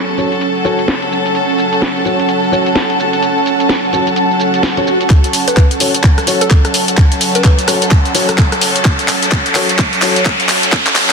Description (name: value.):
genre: bass house.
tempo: 128 BPM.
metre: 4/4.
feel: swing 61% on 16ths.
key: F# minor.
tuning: A4 = 440 Hz.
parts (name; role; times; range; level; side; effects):
rich chamber string section; sustained chords; 0.0-11.1 s; F#3 to A4; -19 LUFS; equal; sidechain pumping, low-pass filter.
ethereal airy pad; texture; 0.0-11.1 s; C#4 to A5; -18 LUFS; right 1 dB; ensemble chorus, built-in reverb, tremolo, sidechain pumping.
garage drum kit; drums; 0.1-11.1 s; handclaps, hi-hat, rim click, shaker, snare drum; -16 LUFS; equal; low-pass filter on hats, low-pass filter on perc, low-pass filter on snare.
dark grand piano; stabs; 0.2-10.2 s; C#4 to C#5; -21 LUFS; left 4 dB; sidechain pumping, low-pass filter, ping-pong delay.
swell and riser; sound effects; 4.3-11.1 s; none; -19 LUFS; right 1 dB; none.
electronic kick drum; drums; 5.1-10.8 s; none; -10 LUFS; equal; none.
hollow square pluck; melody; 5.5-7.7 s; A4 to B4; -22 LUFS; equal; chorus, ping-pong delay.
room: moderate lush hall reverb, RT60 2.2 s.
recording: dense, heavily limited modern master, high-pass filter.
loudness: -10 LUFS.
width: side -5 dB against mid.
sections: 0.0-5.1 A section; 5.1-11.1 B section.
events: swell 4.3-5.1; build-up 5.1-11.1; drum fill 5.1-11.1; filter sweep 5.1-11.1; riser 5.2-11.1.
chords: 0.0 F#m.